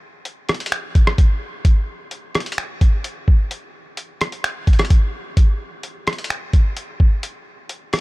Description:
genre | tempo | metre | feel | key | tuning
hip hop | 129 BPM | 4/4 | half-time | none | none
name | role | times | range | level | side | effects
lo-fi sampler-style drum kit | drums | 0.3-8.0 s | finger snaps, hi-hat, kick drum, rim click | -16 LUFS | equal | none
room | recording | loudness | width
little or no reverb | none | -17 LUFS | side -22 dB against mid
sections
0.0-8.0 A section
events
none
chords
none

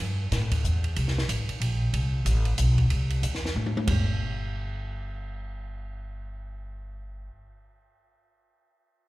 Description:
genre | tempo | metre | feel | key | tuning
modal jazz | 186 BPM | 3/4 | swing 61% on 8ths | unclear | A4 = 439 Hz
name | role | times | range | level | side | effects
upright bass | bass | 0.0-7.3 s | G1 to A2 | -26 LUFS | equal | none
compact cocktail drum kit | drums | 0.3-4.0 s | hi-hat, kick drum, ride cymbal, snare drum, toms | -31 LUFS | equal | none
room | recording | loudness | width
little or no reverb | live gig heard through the venue's PA, recital hall reverb | -24 LUFS | side -18 dB against mid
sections
0.0-3.9 A section; 3.9-5.8 B section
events
drum fill 3.6-3.9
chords
none

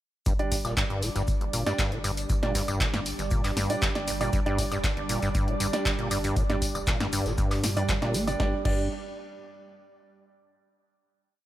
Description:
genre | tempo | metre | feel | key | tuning
acid house | 118 BPM | 4/4 | straight | G minor pentatonic | A4 = 440 Hz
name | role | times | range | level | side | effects
lush unison pad | sustained chords | 0.3-8.6 s | G3 to D5 | -35 LUFS | right 2 dB | chorus, sidechain pumping
deep acid bass | riff | 0.3-8.9 s | G1 to Bb3 | -31 LUFS | equal | tube saturation, sidechain pumping
warm sub bass | bass | 0.3-8.9 s | F1 to G2 | -36 LUFS | equal | sidechain pumping
electronic kick drum | drums | 0.3-8.8 s | none | -28 LUFS | equal | none
punchy analog drum machine | drums | 0.3-8.8 s | crash cymbal, handclaps, hi-hat, snare drum, tambourine, woodblock | -31 LUFS | left 1 dB | none
vintage drum kit | drums | 0.3-8.4 s | hi-hat, shaker, snare drum | -43 LUFS | equal | none
dark baby grand piano | stabs | 0.4-8.8 s | G3 to D5 | -33 LUFS | right 4 dB | dub echo
room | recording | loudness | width
small room ambience | none | -24 LUFS | side -14 dB against mid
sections
0.3-8.4 drop; 8.4-10.4 final chord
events
drop 0.3-8.4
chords
0.3 G5

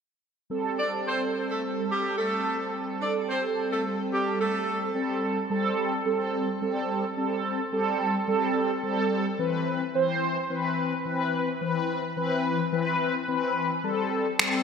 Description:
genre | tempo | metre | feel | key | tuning
dance-pop | 108 BPM | 4/4 | straight | A minor | A4 = 443 Hz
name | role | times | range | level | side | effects
mellow synth brass | accompaniment | 0.5-14.6 s | E3 to C5 | -26 LUFS | equal | chorus, phaser
warm horn section | melody | 0.8-4.8 s | G3 to D5 | -29 LUFS | equal | ping-pong delay
electronic finger snaps | drums | 14.4-14.5 s | none | -21 LUFS | equal | none
room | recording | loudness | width
wet lush hall reverb, RT60 2.1 s | bright 1980s-style digital production | -25 LUFS | side -6 dB against mid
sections
0.5-4.9 A section; 4.9-14.6 B section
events
none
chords
0.5 Am7; 9.4 Cmaj7; 13.8 Am7

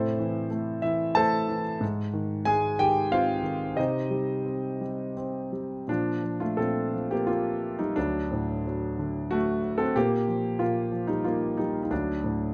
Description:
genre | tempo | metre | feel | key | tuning
classical, lyrical solo piano | 84-94 BPM | 3/4 | rubato | Bb major from 5.9 s | A4 = 440 Hz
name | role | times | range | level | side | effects
warm concert grand piano | solo | 0.0-12.5 s | D2 to A5 | -28 LUFS | equal | none
room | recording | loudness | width
light reverb | close, detailed microphones | -28 LUFS | mono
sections
0.0-5.9 A section; 5.9-12.5 B section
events
none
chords
0.0 Am; 1.8 Ab; 3.8 Cm; 5.9 Bbsus2; 8.0 D; 10.0 Bb5; 11.9 D

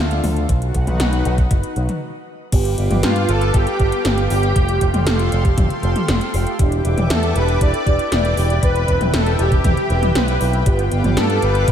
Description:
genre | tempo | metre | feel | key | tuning
synthwave | 118 BPM | 4/4 | straight | unclear | A4 = 440 Hz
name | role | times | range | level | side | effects
chorused pulse-width pad | sustained chords | 0.0-11.7 s | D4 to D6 | -25 LUFS | left 1 dB | sidechain pumping, shimmer reverb
picked electric bass with an envelope filter | bass | 0.0-11.7 s | E1 to G2 | -19 LUFS | equal | tube saturation
80s electronic pad drums | drums | 0.1-11.7 s | crash cymbal, hi-hat, snare drum, toms | -23 LUFS | left 1 dB | gated reverb on snare and toms, overdrive
electronic kick drum | drums | 0.5-11.7 s | none | -17 LUFS | equal | none
mellow synth brass | stabs | 2.5-11.7 s | A3 to C5 | -25 LUFS | right 2 dB | chorus, ping-pong delay, shimmer reverb
soft supersaw | melody | 3.0-11.7 s | F4 to D5 | -23 LUFS | equal | diffuse ambient delay, shimmer reverb
airy dreamy lead | second line | 3.0-11.7 s | F4 to D5 | -28 LUFS | right 1 dB | chorus, ping-pong delay, shimmer reverb
room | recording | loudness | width
moderate lush hall reverb, RT60 2.6 s | dreamy mix soaked in reverb | -15 LUFS | side -9 dB against mid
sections
0.0-2.5 A section; 2.5-11.7 B section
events
stop 2.0-2.5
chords
0.5 B; 2.5 G7; 4.6 Fadd9; 6.6 Em7; 8.6 Cmaj7/E; 10.7 G7

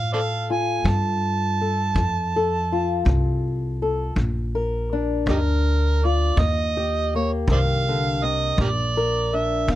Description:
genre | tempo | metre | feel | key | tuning
acoustic country blues, solo or duo | 54 BPM (dotted quarters) | 12/8 | straight | Bb major | A4 = 439 Hz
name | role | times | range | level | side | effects
overdriven harmonica | melody | 0.0-9.8 s | Eb4 to A5 | -25 LUFS | right 4 dB | none
fingerpicked old ladder-braced acoustic guitar | accompaniment | 0.0-9.8 s | Bb2 to Bb4 | -26 LUFS | left 4 dB | none
upright bass | bass | 0.0-9.8 s | G1 to A2 | -23 LUFS | equal | none
kick drum | drums | 0.9-9.8 s | none | -27 LUFS | equal | none
room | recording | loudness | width
little or no reverb | close, detailed microphones | -20 LUFS | side -14 dB against mid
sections
0.0-9.8 A section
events
none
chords
0.0 F; 4.2 Bb; 6.4 Eb; 8.6 Bb

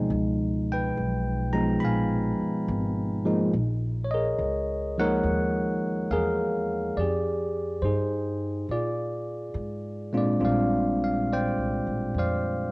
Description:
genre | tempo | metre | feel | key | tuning
jazz ballad | 70 BPM | 4/4 | swing 67% on 8ths | unclear | A4 = 439 Hz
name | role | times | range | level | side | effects
bell-like tine electric piano | accompaniment | 0.0-12.7 s | Bb2 to Cb6 | -25 LUFS | equal | cassette tape
upright bass | bass | 0.0-12.7 s | Ab1 to Bb2 | -31 LUFS | equal | none
room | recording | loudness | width
wet spring reverb, RT60 1.6 s, small room ambience | home recording on cassette | -24 LUFS | side -24 dB against mid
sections
0.0-10.4 A section; 10.4-12.7 B section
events
none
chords
0.1 Db7; 3.5 Gbmaj13; 7.0 Fm9; 8.7 Bb9; 10.4 Bb69

